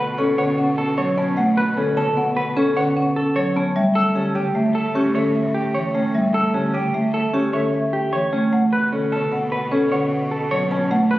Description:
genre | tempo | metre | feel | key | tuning
classical, minimalist pattern music | 151 BPM | 6/4 | straight | B minor | A4 = 440 Hz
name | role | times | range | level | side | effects
marimba with medium mallets | melody | 0.0-11.2 s | G4 to A5 | -24 LUFS | left 3 dB | none
marimba with medium mallets | accompaniment | 0.0-11.2 s | C#3 to C#4 | -21 LUFS | right 1 dB | none
mellow concert flute | arpeggios | 0.0-11.2 s | E5 to F#6 | -28 LUFS | left 1 dB | none
semi-hollow electric guitar | arpeggios | 0.0-11.2 s | C#4 to C#5 | -24 LUFS | right 1 dB | none
warm cello | bass | 0.0-11.2 s | A2 to B2 | -28 LUFS | right 1 dB | none
room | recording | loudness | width
moderate recital hall reverb, RT60 1.3 s | recorded on a phone in the room, studio reverb, nothing above 7.5 kHz | -18 LUFS | side -16 dB against mid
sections
0.0-11.2 A section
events
none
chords
0.0 Bm7; 3.8 A7sus4; 8.5 Bm7

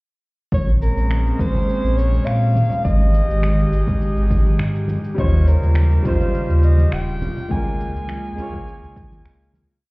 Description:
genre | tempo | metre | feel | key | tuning
sunset chillout | 103 BPM | 4/4 | swing 53% on 16ths | unclear | A4 = 436 Hz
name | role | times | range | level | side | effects
breathy soprano saxophone | melody | 0.5-9.5 s | Bb4 to Ab5 | -27 LUFS | equal | ping-pong delay, shimmer reverb
airy breathy pad | sustained chords | 0.5-9.8 s | Db3 to G4 | -25 LUFS | equal | chorus
warm sub bass | bass | 0.5-9.6 s | Eb1 to Bb2 | -17 LUFS | equal | none
electronic kick drum | drums | 0.5-9.1 s | none | -21 LUFS | equal | overdrive
electronic shaker and finger snaps | drums | 0.5-9.8 s | none | -34 LUFS | equal | overdrive
congas | percussion | 0.7-9.7 s | none | -28 LUFS | right 1 dB | none
clear concert grand piano | accompaniment | 5.1-9.9 s | G3 to Db5 | -28 LUFS | equal | auto-pan
room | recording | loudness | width
little or no reverb | heard muffled through a wall, stone room reverb, EQ | -16 LUFS | side -24 dB against mid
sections
0.5-9.8 groove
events
fade-out 6.7-9.8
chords
0.5 Bbm9; 2.8 Ab5; 5.2 Eb13; 7.5 Db6

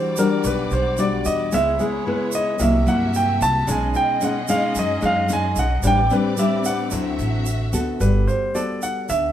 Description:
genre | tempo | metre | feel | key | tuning
bossa nova | 111 BPM | 4/4 | straight | unclear | A4 = 440 Hz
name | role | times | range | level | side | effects
warm grand piano | melody | 0.0-9.3 s | G#4 to A5 | -22 LUFS | right 1 dB | none
nylon-string guitar | accompaniment | 0.0-9.3 s | A2 to A4 | -23 LUFS | left 2 dB | none
warm studio string section | sustained chords | 0.0-8.0 s | G3 to E5 | -30 LUFS | left 1 dB | none
egg shaker | percussion | 0.2-9.3 s | none | -34 LUFS | right 6 dB | none
upright bass | bass | 0.4-9.3 s | G1 to G2 | -23 LUFS | right 1 dB | none
room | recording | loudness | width
moderate large studio reverb, RT60 1.1 s | band playing live in one room | -18 LUFS | side -10 dB against mid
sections
0.0-8.0 A section; 8.0-9.3 B section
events
grand piano solo 0.0-8.0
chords
0.0 Em9; 1.5 C#m7; 2.6 C7#11; 3.7 B69; 5.8 Am11; 6.9 D9; 8.0 Gmaj9

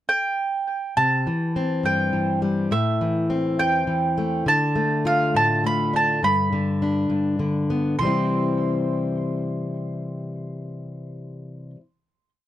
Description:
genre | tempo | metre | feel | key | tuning
indie folk with a building arrangement | 68 BPM (dotted quarters) | 6/8 | straight | C major | A4 = 441 Hz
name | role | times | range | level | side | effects
mandolin | melody | 0.1-11.7 s | E5 to C6 | -23 LUFS | right 2 dB | tape echo
fingerpicked plugged-in steel-string acoustic guitar | accompaniment | 1.0-11.8 s | E2 to F4 | -23 LUFS | left 2 dB | none
room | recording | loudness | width
little or no reverb | dry, close 1970s-style studio recording | -20 LUFS | side -12 dB against mid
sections
0.0-1.0 pickup bar; 1.0-8.0 breakdown; 8.0-11.5 final chord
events
none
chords
0.0 N.C.; 1.0 C; 2.7 Am; 4.5 Dm; 6.2 G; 8.0 C

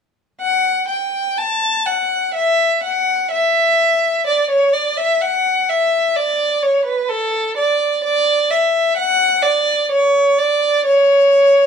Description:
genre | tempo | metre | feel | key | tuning
classical, baroque-style suite movement for unaccompanied violin | 63 BPM | 4/4 | rubato | D major | A4 = 443 Hz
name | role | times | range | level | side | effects
warm violin | solo | 0.4-11.7 s | A4 to A5 | -14 LUFS | equal | none
room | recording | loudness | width
moderate stone room reverb, RT60 1.0 s | dark, warm production | -14 LUFS | side -7 dB against mid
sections
0.4-11.7 A section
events
none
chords
none

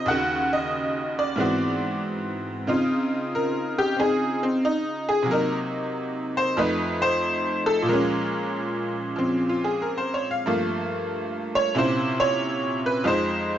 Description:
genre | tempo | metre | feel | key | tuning
solo jazz | 93 BPM | 4/4 | swing 69% on 8ths | Db major | A4 = 440 Hz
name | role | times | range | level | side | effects
tack piano | solo | 0.0-13.6 s | Eb2 to Gb5 | -22 LUFS | equal | none
room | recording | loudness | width
moderate club reverb, RT60 0.7 s | nothing above 7.7 kHz | -22 LUFS | side -10 dB against mid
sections
0.0-2.7 A section; 2.7-13.6 B section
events
honky-tonk piano solo 2.7-13.6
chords
0.1 Ebm7; 1.4 Ab7alt; 2.7 Dbmaj9; 5.3 Cm7b5; 6.6 F7; 7.9 Bbm7; 10.4 Gm9; 11.7 C7b9; 13.0 Fm7

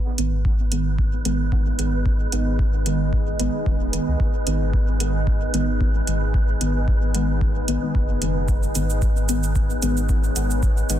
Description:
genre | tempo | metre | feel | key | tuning
dub techno | 112 BPM | 4/4 | swing 54% on 16ths | G# minor | A4 = 440 Hz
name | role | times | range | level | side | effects
deep dark ambient pad | sustained chords | 0.0-11.0 s | B3 to D#5 | -31 LUFS | left 1 dB | chorus, built-in reverb, sidechain pumping
wind-like tuned noise texture | texture | 0.7-11.0 s | B4 | -33 LUFS | right 3 dB | built-in reverb, sidechain pumping
deep mellow chord stab | stabs | 0.2-11.0 s | D#3 to B3 | -26 LUFS | right 1 dB | chorus, phaser, sidechain pumping, dub echo
warm sub bass | bass | 0.2-11.0 s | D#1 to C#2 | -24 LUFS | equal | sidechain pumping
electronic hi-hat and shaker | drums | 0.2-11.0 s | none | -28 LUFS | right 4 dB | overdrive
electronic kick drum | drums | 0.4-10.7 s | none | -22 LUFS | equal | overdrive
room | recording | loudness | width
little or no reverb | dense, heavily limited modern master | -19 LUFS | side -11 dB against mid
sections
0.0-11.0 A section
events
filter sweep on synth stab 0.0-11.0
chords
0.0 G#m

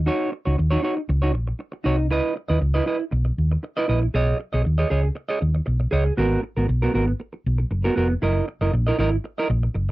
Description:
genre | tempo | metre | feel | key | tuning
disco | 118 BPM | 4/4 | straight | unclear | A4 = 439 Hz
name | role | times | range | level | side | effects
hollow-body short-scale fingered electric bass | bass | 0.0-9.9 s | E#1 to D#2 | -21 LUFS | equal | none
semi-hollow electric guitar | accompaniment | 0.1-9.9 s | B3 to D#5 | -23 LUFS | right 2 dB | none
room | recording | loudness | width
little or no reverb | dry, close 1970s-style studio recording, lossy compression artefacts | -20 LUFS | side -18 dB against mid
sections
0.0-4.1 A section; 4.1-9.9 B section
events
none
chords
0.0 D#m7; 2.1 C#m9; 4.1 B69; 6.2 G#m9; 8.2 F#13

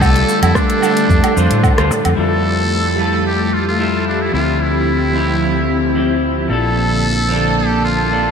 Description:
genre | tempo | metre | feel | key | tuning
sunset chillout | 111 BPM | 4/4 | straight | unclear | A4 = 440 Hz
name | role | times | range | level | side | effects
trumpet with metal mute | melody | 0.0-8.3 s | D4 to A4 | -20 LUFS | equal | diffuse ambient delay
clean electric guitar | accompaniment | 0.0-8.3 s | F3 to C5 | -19 LUFS | moving between left 4 dB and right 5 dB | auto-pan, vintage 12-bit sampler grit, tape echo
airy breathy pad | sustained chords | 0.0-8.3 s | D3 to A5 | -19 LUFS | left 1 dB | chorus, phaser
fingered electric bass | bass | 0.0-8.3 s | Bb1 to A2 | -18 LUFS | equal | none
deep house drum kit | drums | 0.0-2.2 s | cabasa, hi-hat, rim click, woodblock | -23 LUFS | right 2 dB | none
electronic kick drum | drums | 0.0-1.8 s | none | -16 LUFS | equal | none
room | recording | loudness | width
wet huge ambient reverb, RT60 7.9 s | dreamy mix soaked in reverb | -13 LUFS | side -6 dB against mid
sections
0.0-2.2 A section; 2.2-8.3 B section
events
filter sweep on analog synth pad 2.2-8.3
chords
0.0 F69; 2.2 Fmaj9; 4.3 Dm11; 6.5 Bbmaj7

